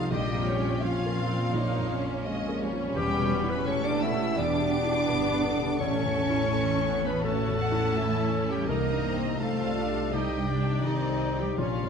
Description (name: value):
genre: cinematic, emotional film score for orchestra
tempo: 84 BPM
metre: 4/4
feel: rubato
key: unclear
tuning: A4 = 443 Hz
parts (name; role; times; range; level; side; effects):
- rich symphonic violin section; melody; 0.0-11.9 s; Eb5 to E6; -37 LUFS; left 3 dB; none
- mellow clarinet; second line; 0.0-11.9 s; Eb4 to E5; -31 LUFS; left 2 dB; none
- warm symphonic violin section; second line; 0.0-11.9 s; G4 to F#5; -37 LUFS; left 1 dB; none
- dark baby grand piano; accompaniment; 0.0-11.9 s; A1 to D5; -34 LUFS; left 2 dB; none
- rich symphonic viola section; accompaniment; 0.0-11.9 s; G3 to F#4; -34 LUFS; right 2 dB; none
- concert harp; arpeggios; 0.0-11.9 s; E2 to G4; -33 LUFS; left 5 dB; none
- dark symphonic cello section; bass; 0.0-11.9 s; Eb3 to E4; -33 LUFS; right 4 dB; none
- warm studio double bass section; bass; 0.0-11.9 s; E1 to C2; -34 LUFS; right 6 dB; none
room: wet scoring stage reverb, RT60 1.9 s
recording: none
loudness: -25 LUFS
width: side -6 dB against mid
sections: 0.0-11.9 A section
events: none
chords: 0.1 A#m; 3.0 Em; 5.8 A; 8.7 Cmadd9